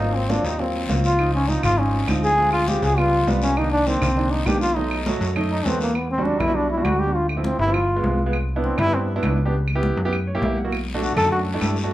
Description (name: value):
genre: Afro-Cuban jazz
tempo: 201 BPM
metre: 4/4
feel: straight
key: E minor from 6.0 s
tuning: A4 = 439 Hz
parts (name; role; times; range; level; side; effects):
- clear trombone; melody; 0.0-11.4 s; A3 to A4; -22 LUFS; left 1 dB; plate reverb, tape echo
- warm concert grand piano; accompaniment; 0.0-11.9 s; Eb3 to F#5; -25 LUFS; right 2 dB; none
- plucky analog bass; bass; 0.0-11.9 s; G1 to G2; -24 LUFS; equal; none
- congas; percussion; 0.0-11.9 s; none; -30 LUFS; equal; none
- guiro; percussion; 0.0-6.0, 10.7-11.9 s; none; -35 LUFS; left 4 dB; none
- claves; percussion; 1.2-11.8 s; none; -32 LUFS; right 2 dB; none
room: wet club reverb, RT60 0.6 s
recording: heard from further back in the room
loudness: -18 LUFS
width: side -14 dB against mid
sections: 0.0-6.0 A section; 6.0-11.9 A section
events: trombone solo 0.0-11.9; grand piano fill 10.1-10.7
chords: 0.0 Ab13; 1.2 Dbmaj9; 2.4 Dm7b5; 3.0 Db7#11; 3.6 Cm9; 4.8 B7; 6.0 Em7; 7.1 Dm7; 7.7 G7b9; 8.3 Cmaj7; 9.5 C#m7b5; 10.1 F#7b9; 10.7 Bm7